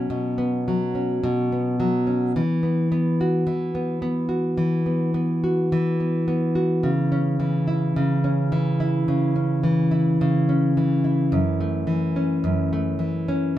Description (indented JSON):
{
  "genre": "pop",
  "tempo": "107 BPM",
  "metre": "4/4",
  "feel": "swing 55% on 16ths",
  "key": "unclear",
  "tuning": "A4 = 440 Hz",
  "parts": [
    { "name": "nylon-string guitar", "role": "solo", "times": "0.0-13.6 s", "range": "F#2 to F#4", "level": "-20 LUFS", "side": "equal", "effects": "none" }
  ],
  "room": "moderate studio reverb, RT60 0.6 s",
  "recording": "band playing live in one room",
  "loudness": "-20 LUFS",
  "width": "side -13 dB against mid",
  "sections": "0.0-13.6 A section",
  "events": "none",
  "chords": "0.0 Bsus2; 2.3 Esus2; 6.8 C#m; 11.3 F#m7",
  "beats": "| 0.10 0.67 1.23 1.78 | 2.35 2.91 3.47 4.03 | 4.59 5.15 5.71 6.27 | 6.83 7.39 7.96 8.52 | 9.08 9.64 10.20 10.76 | 11.32 11.88 12.44 13.01 | 13.57"
}